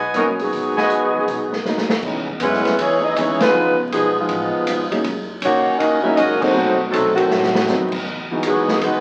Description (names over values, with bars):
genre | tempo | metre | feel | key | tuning
jazz, big band swing | 159 BPM | 4/4 | swing 66% on 8ths | C# minor | A4 = 441 Hz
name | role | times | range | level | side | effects
clear trumpet section | stabs | 0.0-1.2 s | F#4 to G#5 | -24 LUFS | equal | none
upright bass | bass | 0.0-9.0 s | F#1 to B2 | -39 LUFS | equal | none
warm saxophone section | melody | 0.1-9.0 s | D#3 to E5 | -20 LUFS | equal | none
warm baby grand piano | accompaniment | 0.1-8.8 s | E3 to F#4 | -26 LUFS | equal | none
swinging big-band drum kit | drums | 0.1-8.9 s | crash cymbal, hi-hat, kick drum, ride cymbal, rim click, snare drum | -27 LUFS | equal | none
clear trombone section | second line | 0.4-9.0 s | G#2 to E4 | -27 LUFS | equal | none
room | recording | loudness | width
wet large studio reverb, RT60 1.2 s | very old 78 rpm record, vinyl crackle | -18 LUFS | mono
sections
0.0-2.0 A section; 2.0-9.0 B section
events
drum fill 1.7-2.0, 7.3-7.7; band accent 3.4, 6.4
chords
0.0 G#m7; 2.0 C#m7; 3.5 C#9; 5.0 F#6; 6.6 B7b9; 8.1 Emaj9